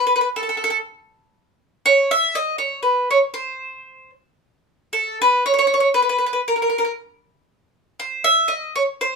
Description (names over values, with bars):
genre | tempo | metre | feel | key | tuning
italian folk | 118 BPM | 3/4 | straight | unclear | A4 = 440 Hz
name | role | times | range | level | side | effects
mandolin | solo | 0.0-9.2 s | A4 to E5 | -17 LUFS | right 1 dB | none
room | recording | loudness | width
moderate studio reverb, RT60 0.5 s | minimal, uncompressed stereo recording | -17 LUFS | side -4 dB against mid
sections
0.0-9.2 A section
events
none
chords
none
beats
| 0.33 0.84 1.35 | 1.86 2.37 2.88 | 3.39 3.90 4.42 | 4.93 5.45 5.96 | 6.47 6.98 7.49 | 8.00 8.51 9.02